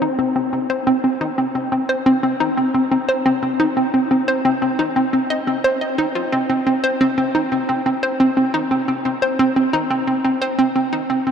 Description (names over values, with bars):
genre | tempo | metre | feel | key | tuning
ambient | 88 BPM | 4/4 | straight | C minor | A4 = 443 Hz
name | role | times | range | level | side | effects
hollow square pluck | solo | 0.0-11.3 s | C4 to Eb5 | -16 LUFS | equal | chorus, tape echo
room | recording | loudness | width
wet huge ambient reverb, RT60 8.8 s | dark, warm production | -16 LUFS | side -7 dB against mid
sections
0.0-11.3 A section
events
fade-out 10.0-11.3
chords
none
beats
0.19 | 0.87 1.55 2.23 2.92 | 3.60 4.28 4.96 5.64 | 6.32 7.01 7.69 8.37 | 9.05 9.73 10.41 11.10